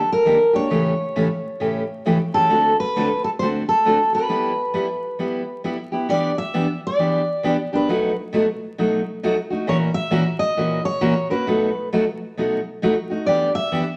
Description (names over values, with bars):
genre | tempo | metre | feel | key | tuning
jazz | 134 BPM | 4/4 | swing 64% on 8ths | G major | A4 = 440 Hz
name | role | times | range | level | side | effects
picked steel-string acoustic guitar | melody | 0.0-14.0 s | A4 to E5 | -23 LUFS | equal | none
picked steel-string acoustic guitar | accompaniment | 0.0-13.8 s | A2 to A#4 | -23 LUFS | equal | none
room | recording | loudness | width
wet large studio reverb, RT60 1.1 s | vinyl crackle | -21 LUFS | mono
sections
0.0-6.1 A section; 6.1-14.0 B section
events
none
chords
0.0 Ebmaj7; 0.7 A7; 2.5 D7; 4.3 G6; 6.1 Em7; 7.9 B7; 9.7 F#7/A#; 11.5 B7; 13.3 Em7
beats
0.25 | 0.70 1.15 1.60 2.05 | 2.50 2.95 3.40 3.85 | 4.29 4.75 5.19 5.64 | 6.09 6.54 6.99 7.44 | 7.89 8.33 8.78 9.23 | 9.68 10.12 10.57 11.02 | 11.47 11.91 12.36 12.81 | 13.26 13.70